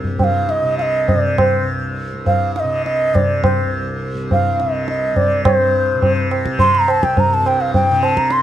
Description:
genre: indian classical, Hindustani.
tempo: 104 BPM.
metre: 4/4.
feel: straight.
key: C raga bhimpalasi.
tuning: A4 = 439 Hz.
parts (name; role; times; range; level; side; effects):
tanpura; drone; 0.0-8.4 s; C2 to C3; -22 LUFS; equal; none.
tabla; percussion; 0.0-8.4 s; none; -17 LUFS; equal; none.
mellow bansuri; melody; 0.2-8.4 s; C5 to C6; -17 LUFS; equal; plate reverb.
room: light reverb.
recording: dark, warm production.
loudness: -14 LUFS.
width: side -11 dB against mid.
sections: 0.0-5.5 A section; 5.5-8.4 B section.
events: speeding up 0.0-8.4.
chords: none.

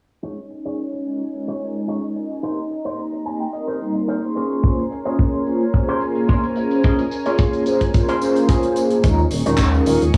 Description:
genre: nu-disco, nu disco.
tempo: 109 BPM.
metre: 4/4.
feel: straight.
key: unclear.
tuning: A4 = 440 Hz.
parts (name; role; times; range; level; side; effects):
mellow synth brass; accompaniment; 0.2-10.2 s; G3 to C6; -23 LUFS; equal; chorus, sidechain pumping, cassette tape, tape echo.
lush unison pad; sustained chords; 0.2-10.2 s; Db4 to Db6; -30 LUFS; equal; chorus, sidechain pumping, cassette tape.
electric guitar with an envelope filter; riff; 0.2-10.2 s; Db4 to Ab5; -29 LUFS; equal; lush chorus, low-pass filter, cassette tape, tape echo.
tight funk drum kit; drums; 0.2-10.2 s; handclaps, hi-hat; -36 LUFS; equal; cassette tape.
kick drum; drums; 4.6-10.2 s; none; -20 LUFS; equal; cassette tape.
tambourine; percussion; 4.6-10.2 s; none; -42 LUFS; equal; none.
chorused synth bass; bass; 9.0-10.2 s; Eb1 to Eb2; -21 LUFS; equal; sidechain pumping.
room: moderate booth ambience, RT60 0.3 s.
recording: home recording on cassette, low-pass filter, studio reverb.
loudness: -20 LUFS.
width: mono.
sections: 0.2-9.0 A section; 9.0-10.2 B section.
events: filter sweep on clean electric guitar 0.2-9.0; filter sweep on analog polysynth 0.2-9.0; filter sweep 0.2-9.0; clean electric guitar fill 3.0-4.6, 8.2-9.0.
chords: 0.2 Eb7sus4; 2.4 Cm7; 4.4 Bbm9; 9.0 Eb7sus4.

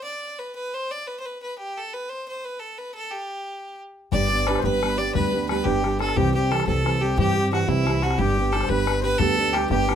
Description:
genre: celtic folk, Celtic slide.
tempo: 118 BPM (dotted quarters).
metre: 12/8.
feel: straight.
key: G major.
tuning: A4 = 440 Hz.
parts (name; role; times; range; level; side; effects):
bright fiddle; melody; 0.0-10.0 s; E4 to D5; -26 LUFS; equal; none.
accordion; second line; 4.1-10.0 s; E4 to D5; -29 LUFS; left 4 dB; none.
fingerpicked plugged-in steel-string acoustic guitar; accompaniment; 4.1-10.0 s; C3 to G4; -25 LUFS; right 5 dB; none.
upright bass; bass; 4.1-10.0 s; G1 to G2; -26 LUFS; equal; none.
bodhran; percussion; 4.1-10.0 s; none; -28 LUFS; left 10 dB; none.
room: light reverb.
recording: close, detailed microphones.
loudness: -21 LUFS.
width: side -9 dB against mid.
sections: 0.0-4.1 A section; 4.1-10.0 A section.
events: none.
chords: 0.0 N.C.; 4.1 G; 6.2 C; 8.2 G.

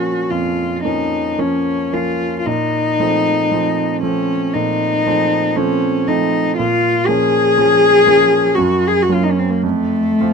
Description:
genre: classical, romantic duo for cello and grand piano.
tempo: 50-61 BPM.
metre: 4/4.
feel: rubato.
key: Bb minor.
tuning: A4 = 437 Hz.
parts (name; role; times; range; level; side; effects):
dark cello; melody; 0.0-10.3 s; A3 to Ab4; -15 LUFS; left 3 dB; none.
clear concert grand piano; accompaniment; 0.0-10.3 s; F2 to F4; -19 LUFS; right 4 dB; none.
room: light reverb.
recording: close, detailed microphones.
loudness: -13 LUFS.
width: side -5 dB against mid.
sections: 0.0-10.3 A section.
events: none.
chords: 0.0 Bbm; 2.5 F7/Bb; 6.6 Bbm; 8.6 Gb; 9.6 F.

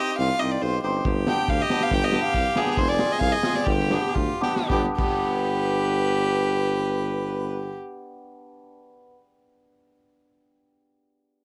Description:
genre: klezmer.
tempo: 104-139 BPM.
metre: 2/4.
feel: straight.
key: G phrygian dominant.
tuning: A4 = 441 Hz.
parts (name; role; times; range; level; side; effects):
warm violin; melody; 0.0-7.8 s; G4 to G5; -28 LUFS; equal; none.
mellow harmonica; second line; 0.0-7.8 s; F4 to B4; -32 LUFS; equal; none.
hammered dulcimer; accompaniment; 0.0-9.1 s; B3 to Ab4; -33 LUFS; equal; none.
warm tuba; bass; 0.2-7.8 s; F1 to D2; -29 LUFS; equal; none.
crunchy breakbeat drum kit; drums; 1.1-5.1 s; crash cymbal, kick drum, snare drum; -30 LUFS; equal; vintage 12-bit sampler grit.
room: little or no reverb.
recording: dry, gritty hardware recording.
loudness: -23 LUFS.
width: mono.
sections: 0.0-4.7 A section; 4.7-7.0 B section.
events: slowing down 2.8-4.7; drum fill 4.4.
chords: 0.0 Cm; 1.0 G; 2.8 Fm; 3.7 G.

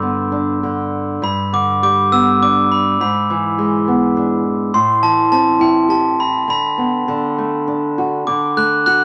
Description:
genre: children's music, lullaby.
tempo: 101 BPM.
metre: 3/4.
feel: rubato.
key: G major.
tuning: A4 = 440 Hz.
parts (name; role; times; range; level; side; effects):
glockenspiel with brass mallets; melody; 0.0-9.0 s; G5 to F#6; -18 LUFS; equal; none.
nylon-string guitar; accompaniment; 0.0-9.0 s; G2 to G4; -20 LUFS; equal; none.
room: wet studio reverb, RT60 0.5 s.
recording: none.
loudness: -16 LUFS.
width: mono.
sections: 0.0-1.2 A section; 1.2-9.0 A section.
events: none.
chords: 0.0 G; 3.0 E7/G#; 4.7 Am7; 6.5 Bm/D; 7.1 D.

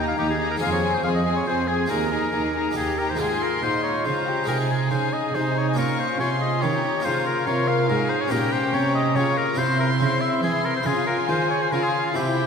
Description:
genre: classical, baroque-style concerto movement with solo episodes.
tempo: 141 BPM.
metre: 3/4.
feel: straight.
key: Ab major.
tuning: A4 = 441 Hz.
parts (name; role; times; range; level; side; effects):
warm chamber violin section; melody; 0.0-12.5 s; F5 to Db6; -31 LUFS; left 2 dB; none.
warm oboe; melody; 0.0-12.5 s; F4 to F5; -25 LUFS; left 2 dB; none.
warm chamber violin section; second line; 0.0-12.5 s; Eb4 to Bb4; -28 LUFS; left 3 dB; none.
dark chamber viola section; accompaniment; 0.0-12.5 s; C4 to F4; -28 LUFS; left 1 dB; none.
harpsichord; accompaniment; 0.0-12.5 s; Eb2 to Ab4; -27 LUFS; right 2 dB; none.
dark chamber cello section; bass; 0.0-12.5 s; Eb2 to E3; -30 LUFS; right 3 dB; none.
room: wet concert hall reverb, RT60 2.3 s.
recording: none.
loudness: -20 LUFS.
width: side -6 dB against mid.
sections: 0.0-3.2 A section; 3.2-12.5 A section.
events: none.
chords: 0.0 Eb5; 0.6 Fm; 1.9 Ebsus4; 2.8 Eb; 3.2 Ab; 4.5 Ab/C; 5.8 Bbm; 8.3 Gdim/Bb; 9.6 C; 10.9 Db.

